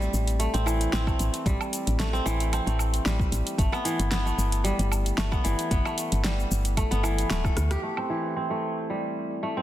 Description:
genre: organic downtempo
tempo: 113 BPM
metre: 4/4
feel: swing 54% on 16ths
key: A minor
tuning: A4 = 441 Hz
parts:
  - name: kora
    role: arpeggios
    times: 0.0-9.6 s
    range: E3 to A4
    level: -28 LUFS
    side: equal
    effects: low-pass filter, tape echo
  - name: woody FM bass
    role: bass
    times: 0.0-7.8 s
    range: D1 to D2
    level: -26 LUFS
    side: equal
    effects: none
  - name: deep house drum kit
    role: drums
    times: 0.0-8.1 s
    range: cabasa, hi-hat, rim click, snare drum, woodblock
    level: -32 LUFS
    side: equal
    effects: low-pass filter on perc, low-pass filter on snare, low-pass filter on hats
  - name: electronic kick drum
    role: drums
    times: 1.1-7.5 s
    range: none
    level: -27 LUFS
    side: equal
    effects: none
room: light reverb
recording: dense, heavily limited modern master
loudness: -24 LUFS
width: side -13 dB against mid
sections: 0.0-7.8 A section; 7.8-9.6 B section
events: drum fill 7.4-7.8; filter sweep on kora 7.8-9.6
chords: 0.0 Am7; 3.6 G; 7.8 Am7

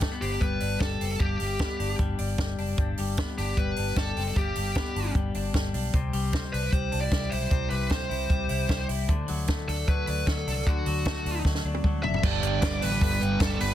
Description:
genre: jangly indie pop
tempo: 152 BPM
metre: 4/4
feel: straight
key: G major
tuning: A4 = 441 Hz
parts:
  - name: twelve-string electric guitar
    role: arpeggios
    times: 0.0-13.7 s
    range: G2 to E4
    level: -32 LUFS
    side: left 4 dB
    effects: none
  - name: vintage muted fingered electric bass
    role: bass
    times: 0.0-13.7 s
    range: F#1 to D2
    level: -31 LUFS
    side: equal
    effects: none
  - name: compact cocktail drum kit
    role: drums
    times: 0.0-13.7 s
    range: crash cymbal, hi-hat, kick drum, snare drum, toms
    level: -28 LUFS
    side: equal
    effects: none
  - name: high-gain lead guitar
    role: melody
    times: 0.2-13.7 s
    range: F#4 to E5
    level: -32 LUFS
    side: right 1 dB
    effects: distortion
  - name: overdriven semi-hollow guitar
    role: accompaniment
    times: 12.2-13.7 s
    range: G2 to G4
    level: -30 LUFS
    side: right 8 dB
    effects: none
  - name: group handclap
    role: percussion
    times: 12.4-13.5 s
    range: none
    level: -42 LUFS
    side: left 12 dB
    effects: none
room: little or no reverb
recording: dense, heavily limited modern master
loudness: -24 LUFS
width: side -12 dB against mid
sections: 0.0-12.2 A section; 12.2-13.7 B section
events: drum fill 11.4-12.2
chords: 0.0 G; 5.9 C; 9.1 D; 12.2 G

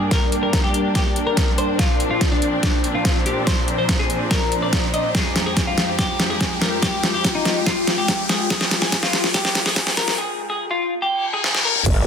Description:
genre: heavy wobble dubstep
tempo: 143 BPM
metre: 4/4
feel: half-time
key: unclear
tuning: A4 = 440 Hz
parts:
  - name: twelve-string electric guitar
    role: melody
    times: 0.0-11.8 s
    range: D4 to Eb5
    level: -24 LUFS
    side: left 2 dB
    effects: low-pass filter, dub echo
  - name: clear studio string section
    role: sustained chords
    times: 0.0-12.1 s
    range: F2 to G5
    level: -27 LUFS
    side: left 1 dB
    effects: sidechain pumping, low-pass filter
  - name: riser, reverse cymbal and sub drop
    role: sound effects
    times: 0.0-12.1 s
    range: none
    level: -28 LUFS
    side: left 3 dB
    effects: none
  - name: ethereal airy pad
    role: texture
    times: 0.0-10.2 s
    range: Ab3 to Bb5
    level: -28 LUFS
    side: left 1 dB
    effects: ensemble chorus, built-in reverb, sidechain pumping
  - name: dubstep drum kit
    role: drums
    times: 0.1-11.9 s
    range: crash cymbal, hi-hat, snare drum, toms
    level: -21 LUFS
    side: equal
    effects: overdrive
  - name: electronic kick drum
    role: drums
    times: 0.1-11.9 s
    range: none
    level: -22 LUFS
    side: equal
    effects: overdrive
  - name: growl bass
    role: bass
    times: 11.9-12.1 s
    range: G1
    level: -20 LUFS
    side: equal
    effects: chorus, overdrive
room: light reverb, digital ambience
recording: dense, heavily limited modern master, high-pass filter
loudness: -17 LUFS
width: side -7 dB against mid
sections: 0.0-11.9 A section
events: build-up 0.0-11.9; drum fill 0.0-10.2, 11.4-11.9; riser 0.0-10.2; filter sweep 0.0-11.9; reverse cymbal 11.2-11.9; impact 11.9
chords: 0.0 Gm; 1.8 Bbadd9; 5.1 Fmadd9

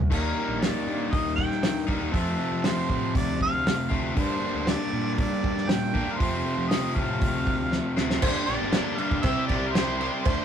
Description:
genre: classic rock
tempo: 118 BPM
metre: 4/4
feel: straight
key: unclear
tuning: A4 = 440 Hz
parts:
  - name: cranked stack guitar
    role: riff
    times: 0.0-10.4 s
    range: F2 to G4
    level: -28 LUFS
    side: left 3 dB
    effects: overdrive
  - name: crunchy overdriven guitar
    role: riff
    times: 0.0-10.4 s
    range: F2 to Eb4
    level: -34 LUFS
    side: right 6 dB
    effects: none
  - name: fuzz fingered electric bass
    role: bass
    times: 0.0-10.4 s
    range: G1 to F3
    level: -34 LUFS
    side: right 1 dB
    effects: overdrive
  - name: damped 70s drum kit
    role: drums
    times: 0.0-10.4 s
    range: crash cymbal, hi-hat, kick drum, snare drum, toms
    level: -27 LUFS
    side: equal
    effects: none
  - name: mellow harmonica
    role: melody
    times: 0.1-10.4 s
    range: A4 to G5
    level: -31 LUFS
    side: right 2 dB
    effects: none
  - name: cowbell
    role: percussion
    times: 8.2-10.4 s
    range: none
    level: -34 LUFS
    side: left 1 dB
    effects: none
room: moderate small room reverb, RT60 0.5 s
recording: rough rehearsal-room recording, warm saturation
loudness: -23 LUFS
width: side -8 dB against mid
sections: 0.1-8.2 A section; 8.2-10.4 B section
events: drum fill 7.7-8.2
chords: 0.1 Eb; 2.1 F; 4.2 Gm; 6.2 F; 8.2 Gm; 9.2 C

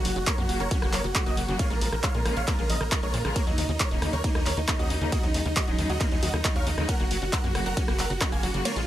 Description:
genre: uplifting trance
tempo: 136 BPM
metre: 4/4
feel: straight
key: Eb minor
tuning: A4 = 442 Hz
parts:
  - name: big supersaw lead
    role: melody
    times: 0.0-8.9 s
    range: Eb4 to Ab5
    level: -31 LUFS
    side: right 1 dB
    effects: sidechain pumping, dub echo
  - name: liquid acid bass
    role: arpeggios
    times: 0.0-8.8 s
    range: Db3 to Db4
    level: -36 LUFS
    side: left 2 dB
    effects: chorus, sidechain pumping, digital delay
  - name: tight sequencer bass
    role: bass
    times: 0.0-8.9 s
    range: Eb1 to Bb2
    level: -30 LUFS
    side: equal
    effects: sidechain pumping
  - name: punchy analog drum machine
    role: drums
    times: 0.1-8.9 s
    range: handclaps, hi-hat, ride cymbal, rim click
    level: -31 LUFS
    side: right 1 dB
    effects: sidechain pumping on hats, sidechain pumping on cymbals
  - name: electronic kick drum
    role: drums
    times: 0.3-8.3 s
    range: none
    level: -27 LUFS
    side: equal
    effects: none
  - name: clear studio string section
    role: sustained chords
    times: 0.4-8.8 s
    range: Db3 to Gb4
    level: -34 LUFS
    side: equal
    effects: sidechain pumping
room: little or no reverb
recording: lossy compression artefacts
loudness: -23 LUFS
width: side -13 dB against mid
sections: 0.0-8.9 A section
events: kick drops out 8.7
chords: 0.0 Gb; 1.6 Bbm7; 3.4 Ebm7; 6.9 Gb

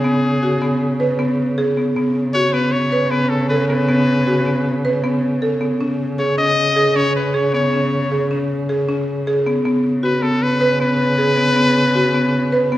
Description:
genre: contemporary instrumental, chamber music in an uneven meter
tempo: 156 BPM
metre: 5/4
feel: straight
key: unclear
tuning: A4 = 444 Hz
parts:
  - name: clear trumpet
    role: melody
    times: 0.0-12.8 s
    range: G#4 to D#5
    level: -19 LUFS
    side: left 2 dB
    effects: none
  - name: buzzing marimba with medium hard mallets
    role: arpeggios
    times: 0.0-12.8 s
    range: B3 to B4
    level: -18 LUFS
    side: equal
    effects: none
  - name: dark cello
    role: bass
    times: 0.0-12.8 s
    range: C#3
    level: -21 LUFS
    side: equal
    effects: none
room: wet scoring stage reverb, RT60 1.8 s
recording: none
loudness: -15 LUFS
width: side -14 dB against mid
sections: 0.0-12.8 A section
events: none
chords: 0.0 C#7(no3); 2.0 B5/C#; 5.8 C#5; 9.7 N.C.

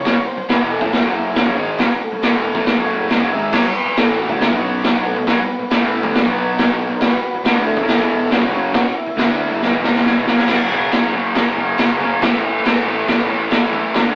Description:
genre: garage rock duo or trio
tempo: 138 BPM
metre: 4/4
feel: straight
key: F# minor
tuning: A4 = 440 Hz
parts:
  - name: overdriven combo organ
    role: melody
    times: 0.0-9.8 s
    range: G#3 to E5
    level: -26 LUFS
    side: equal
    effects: digital delay
  - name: fuzz guitar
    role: riff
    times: 0.0-14.2 s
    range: E2 to D4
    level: -22 LUFS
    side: equal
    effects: distortion
  - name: fuzz picked electric bass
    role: bass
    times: 0.0-14.1 s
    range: E1 to D2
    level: -31 LUFS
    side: equal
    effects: overdrive, tube saturation
  - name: raw garage drum kit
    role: drums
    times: 0.1-14.1 s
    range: crash cymbal, hi-hat, kick drum, snare drum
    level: -19 LUFS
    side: equal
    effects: none
room: light reverb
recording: rough rehearsal-room recording, tube saturation, AM radio sound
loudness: -17 LUFS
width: mono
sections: 0.0-10.5 A section; 10.5-14.2 B section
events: drum fill 9.6-10.5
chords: 0.0 F#m; 3.5 B5; 7.0 E5; 10.5 F#5; 12.2 A5

